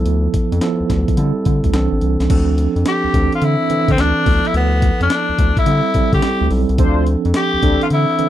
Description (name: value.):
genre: R&B, new jack swing.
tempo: 107 BPM.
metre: 4/4.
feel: swing 66% on 16ths.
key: D dorian.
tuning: A4 = 439 Hz.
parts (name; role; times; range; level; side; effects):
mellow tine electric piano; accompaniment; 0.0-8.3 s; E3 to A4; -19 LUFS; right 5 dB; fast stereo tremolo.
round analog bass; bass; 0.0-8.3 s; A1 to D3; -17 LUFS; left 1 dB; none.
breakbeat sampler-style drum kit; drums; 0.1-8.3 s; crash cymbal, hi-hat, kick drum, snare drum; -19 LUFS; left 1 dB; none.
raspy tenor saxophone; melody; 2.9-8.3 s; B3 to G4; -18 LUFS; left 3 dB; slapback echo.
mellow synth brass; stabs; 6.8-7.8 s; D4 to C5; -22 LUFS; left 4 dB; chorus, slapback echo.
room: little or no reverb.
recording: dry, close 1970s-style studio recording.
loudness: -13 LUFS.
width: side -12 dB against mid.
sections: 0.0-2.3 A section; 2.3-8.3 B section.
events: none.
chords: 0.0 Dm69; 1.2 Am7/D; 1.7 C69; 2.3 Dm7; 3.1 C69/D; 4.3 Dm69; 5.7 Am7/D; 6.8 Dm7; 7.6 C69/D.